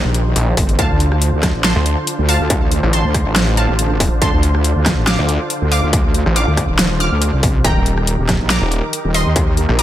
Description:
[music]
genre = heavy wobble dubstep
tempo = 140 BPM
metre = 4/4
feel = swing 54% on 16ths, half-time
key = D phrygian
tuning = A4 = 440 Hz
[part]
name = supersaw chords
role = sustained chords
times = 0.0-9.8 s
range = D3 to C5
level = -23 LUFS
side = right 1 dB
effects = sidechain pumping, low-pass filter
[part]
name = snarling distorted saw bass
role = bass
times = 0.0-9.8 s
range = Eb1 to D2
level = -15 LUFS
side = equal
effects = distortion, overdrive
[part]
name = wobble bass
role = bass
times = 0.0-9.7 s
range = Eb1 to Eb2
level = -16 LUFS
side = equal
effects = chorus, overdrive
[part]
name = dubstep drum kit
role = drums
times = 0.1-9.8 s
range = hi-hat, rim click, snare drum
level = -19 LUFS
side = equal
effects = none
[part]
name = electronic kick drum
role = drums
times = 0.6-9.5 s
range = none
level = -18 LUFS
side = equal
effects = distortion
[part]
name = wide unison pluck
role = melody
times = 0.8-9.8 s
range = Eb5 to F6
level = -23 LUFS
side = right 1 dB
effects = tape echo
[sound]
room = little or no reverb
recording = none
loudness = -13 LUFS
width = side -12 dB against mid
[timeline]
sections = 0.0-9.8 A section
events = none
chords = 0.0 Eb; 0.8 Dm7; 7.6 Eb

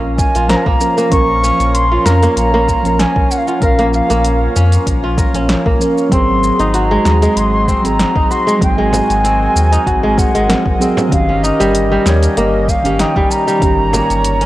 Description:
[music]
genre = organic downtempo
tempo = 96 BPM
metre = 4/4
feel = swing 54% on 16ths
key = Bb minor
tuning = A4 = 440 Hz
[part]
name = muted felt-like synth keys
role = accompaniment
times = 0.0-14.5 s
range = Eb3 to Db5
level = -19 LUFS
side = right 2 dB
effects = chorus, sidechain pumping, shimmer reverb
[part]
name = warm analog pad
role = sustained chords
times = 0.0-14.5 s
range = C4 to F5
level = -23 LUFS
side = equal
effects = chorus, sidechain pumping, shimmer reverb
[part]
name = kora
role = arpeggios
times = 0.0-14.5 s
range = G3 to Bb4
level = -17 LUFS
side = equal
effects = digital delay, shimmer reverb
[part]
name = warm sub bass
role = bass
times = 0.0-14.5 s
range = G1 to F2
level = -16 LUFS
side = equal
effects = sidechain pumping
[part]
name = bansuri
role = melody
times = 0.2-14.5 s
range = Db5 to Db6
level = -17 LUFS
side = equal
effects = ping-pong delay, shimmer reverb
[part]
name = deep house drum kit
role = drums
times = 0.2-14.5 s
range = hi-hat, shaker, snare drum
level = -20 LUFS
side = equal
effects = overdrive
[part]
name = electronic kick drum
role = drums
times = 0.2-13.8 s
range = none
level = -17 LUFS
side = equal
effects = overdrive
[part]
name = frame drum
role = percussion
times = 8.9-14.1 s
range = none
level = -22 LUFS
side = right 2 dB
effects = none
[sound]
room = moderate lush hall reverb, RT60 2.8 s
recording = worn, warbling old tape, cassette tape, warbly pitch drift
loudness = -11 LUFS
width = side -16 dB against mid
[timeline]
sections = 0.0-14.5 A section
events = none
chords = 0.0 Bbm; 6.1 Ab7; 11.1 Eb7/G

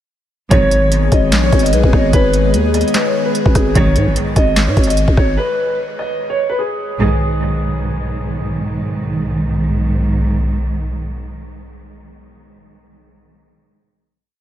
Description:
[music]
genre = hip hop, trap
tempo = 148 BPM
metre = 4/4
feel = half-time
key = G# minor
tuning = A4 = 440 Hz
[part]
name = dark concert grand piano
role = melody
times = 0.5-8.2 s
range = G#4 to D#5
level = -20 LUFS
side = equal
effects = lush chorus, tape echo
[part]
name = gliding portamento lead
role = second line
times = 0.5-3.3 s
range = B4 to D#5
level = -23 LUFS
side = left 2 dB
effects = chorus, tape echo
[part]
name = airy breathy pad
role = sustained chords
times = 0.9-5.3 s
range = D#3 to G#4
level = -22 LUFS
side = left 1 dB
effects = chorus
[part]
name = dark symphonic string section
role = stabs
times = 0.5-0.9, 3.8-4.1, 7.0-11.0 s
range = B1 to D#3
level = -19 LUFS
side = right 1 dB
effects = tape echo
[part]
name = growling 808-style bass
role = bass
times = 0.5-5.4 s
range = G#1 to G#2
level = -15 LUFS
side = equal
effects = none
[part]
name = trap drum kit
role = drums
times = 0.5-5.3 s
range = handclaps, hi-hat, kick drum, rim click, snare drum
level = -16 LUFS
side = equal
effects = none
[sound]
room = light reverb, digital ambience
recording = none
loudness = -13 LUFS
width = side -11 dB against mid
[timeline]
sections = 0.5-7.0 hook; 7.0-10.2 final chord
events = none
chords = 0.5 G#m

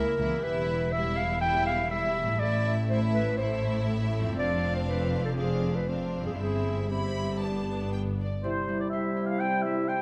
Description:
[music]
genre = classical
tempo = 121 BPM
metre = 4/4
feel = straight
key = C major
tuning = A4 = 440 Hz
[part]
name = warm chamber violin section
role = melody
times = 0.0-8.4 s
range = D5 to B5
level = -43 LUFS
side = equal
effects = none
[part]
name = warm clarinet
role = second line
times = 0.0-10.0 s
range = E4 to G5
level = -33 LUFS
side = equal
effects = none
[part]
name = warm symphonic violin section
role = second line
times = 0.0-8.2 s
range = D4 to Fb4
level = -40 LUFS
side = equal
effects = none
[part]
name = dark symphonic viola section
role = accompaniment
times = 0.0-8.2 s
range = G3 to C4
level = -40 LUFS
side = equal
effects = none
[part]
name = concert harp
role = arpeggios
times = 0.0-10.0 s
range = F2 to D5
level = -38 LUFS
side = equal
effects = none
[part]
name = warm symphonic cello section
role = bass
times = 0.2-8.2 s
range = Db2 to A2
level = -36 LUFS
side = equal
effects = none
[part]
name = warm symphonic double bass section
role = bass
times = 0.2-8.2 s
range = E1 to Db2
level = -35 LUFS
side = equal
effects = none
[part]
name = silver concert flute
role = second line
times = 8.4-10.0 s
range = C5 to G5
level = -34 LUFS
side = equal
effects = none
[part]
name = warm oboe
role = second line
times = 8.4-10.0 s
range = C5 to G5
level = -37 LUFS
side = equal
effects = none
[part]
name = warm bassoon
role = accompaniment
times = 8.4-10.0 s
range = C3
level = -37 LUFS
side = equal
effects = none
[part]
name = mellow French horn section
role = sustained chords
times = 8.4-10.0 s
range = G3 to E4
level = -36 LUFS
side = equal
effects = none
[sound]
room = light reverb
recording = close, detailed microphones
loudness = -28 LUFS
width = mono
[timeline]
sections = 0.0-8.4 A section; 8.4-10.0 B section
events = none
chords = 0.4 Em; 2.4 Am; 4.4 Dm7/F; 5.4 Dm7b5/F; 6.4 C/G; 7.4 G; 8.4 C

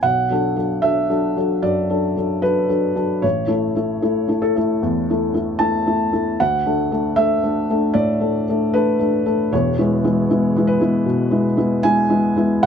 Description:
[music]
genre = neoclassical minimalist piano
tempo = 76 BPM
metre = 4/4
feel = rubato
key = unclear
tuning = A4 = 441 Hz
[part]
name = felt-muted upright piano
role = solo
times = 0.0-12.7 s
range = E1 to A5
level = -16 LUFS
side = equal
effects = none
[sound]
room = light reverb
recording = close, detailed microphones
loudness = -16 LUFS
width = side -7 dB against mid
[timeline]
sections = 0.0-12.7 A section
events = none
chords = 0.0 Bm7; 3.2 A; 6.4 D; 9.5 E

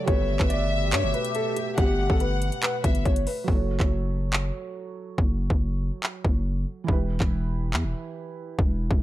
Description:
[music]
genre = hip hop, trap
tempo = 141 BPM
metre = 4/4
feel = half-time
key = F# phrygian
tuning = A4 = 440 Hz
[part]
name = dark concert grand piano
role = melody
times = 0.0-3.5 s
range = G4 to D5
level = -30 LUFS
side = left 1 dB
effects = low-pass filter, tape echo
[part]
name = warm studio violin section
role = second line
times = 0.0-3.0 s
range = E5 to F#5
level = -32 LUFS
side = left 2 dB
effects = tape echo
[part]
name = felt-muted upright piano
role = accompaniment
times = 0.0-9.0 s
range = E3 to C#5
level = -35 LUFS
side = right 7 dB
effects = low-pass filter
[part]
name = dark analog pad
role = sustained chords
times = 0.0-3.4 s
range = B2 to G4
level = -35 LUFS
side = right 1 dB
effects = chorus, phaser
[part]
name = growling 808-style bass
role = bass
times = 0.1-9.0 s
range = E1 to G2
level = -26 LUFS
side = equal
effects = none
[part]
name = trap drum kit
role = drums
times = 0.1-9.0 s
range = handclaps, hi-hat, kick drum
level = -24 LUFS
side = equal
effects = none
[sound]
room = studio reverb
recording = dark, warm production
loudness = -23 LUFS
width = side -14 dB against mid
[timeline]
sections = 0.0-3.5 A section; 3.5-9.0 B section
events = break 3.5-9.0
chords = 0.1 Gadd9; 3.5 F#m; 6.9 Em

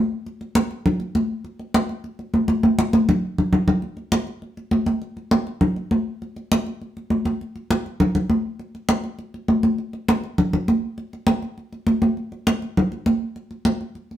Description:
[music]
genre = jazz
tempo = 202 BPM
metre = 4/4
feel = straight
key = none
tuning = none
[part]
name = congas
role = percussion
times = 0.3-14.2 s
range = none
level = -19 LUFS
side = equal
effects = none
[sound]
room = wet studio reverb, RT60 0.7 s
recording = band playing live in one room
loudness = -20 LUFS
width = side -12 dB against mid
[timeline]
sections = 0.0-3.8 A section; 3.8-13.4 A section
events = drum fill 2.6-3.8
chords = none

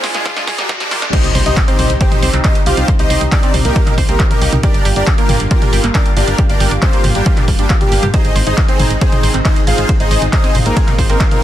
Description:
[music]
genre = uplifting trance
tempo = 137 BPM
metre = 4/4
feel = straight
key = C minor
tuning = A4 = 440 Hz
[part]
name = supersaw chords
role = melody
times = 0.0-11.4 s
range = G3 to F5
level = -19 LUFS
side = equal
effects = analog chorus, sidechain pumping, digital delay
[part]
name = lush unison pad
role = sustained chords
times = 0.0-11.4 s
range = Bb2 to F4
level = -24 LUFS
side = equal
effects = chorus, sidechain pumping
[part]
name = wide unison pluck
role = arpeggios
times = 0.0-11.2 s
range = Bb3 to C5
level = -24 LUFS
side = right 5 dB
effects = sidechain pumping, digital delay
[part]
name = punchy analog drum machine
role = drums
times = 0.0-11.4 s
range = crash cymbal, handclaps, hi-hat, ride cymbal, snare drum, toms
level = -20 LUFS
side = equal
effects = none
[part]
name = riser and impact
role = sound effects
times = 0.0-2.9 s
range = none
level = -23 LUFS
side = equal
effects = none
[part]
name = electronic kick drum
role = drums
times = 0.3-11.3 s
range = none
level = -14 LUFS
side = equal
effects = overdrive
[part]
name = dark grand piano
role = second line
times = 1.1-11.4 s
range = G4 to F5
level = -25 LUFS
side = left 2 dB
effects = sidechain pumping, digital delay
[part]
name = solid FM bass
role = bass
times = 1.2-11.2 s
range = G1 to G2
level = -17 LUFS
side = equal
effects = sidechain pumping
[sound]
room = little or no reverb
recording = dense, heavily limited modern master, high-pass filter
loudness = -11 LUFS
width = side -12 dB against mid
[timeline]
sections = 0.0-1.1 A section; 1.1-11.4 B section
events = build-up 0.0-1.1; drum fill 0.0-1.1; riser 0.0-1.1; drop 1.1-11.4; impact 1.1-2.9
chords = 0.0 Bb7; 1.1 Cm; 4.6 Gm7; 8.1 Ab

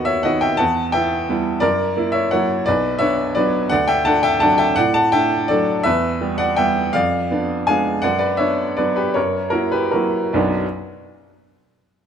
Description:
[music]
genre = classical, piano waltz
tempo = 135-186 BPM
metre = 3/4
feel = rubato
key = B minor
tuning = A4 = 444 Hz
[part]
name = clear upright piano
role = solo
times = 0.0-10.7 s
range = B1 to A5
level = -16 LUFS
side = equal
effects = none
[sound]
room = moderate scoring stage reverb, RT60 1.6 s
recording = close, detailed microphones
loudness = -16 LUFS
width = side -8 dB against mid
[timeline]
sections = 0.0-10.4 A section; 10.4-11.5 B section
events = slowing down 7.5-10.4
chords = 0.0 B/D#; 0.6 Em; 1.6 F#7; 2.7 Bm; 3.7 D; 5.9 Em; 7.0 Fdim7; 8.0 Bm/F#; 9.2 F#7; 10.4 Bm

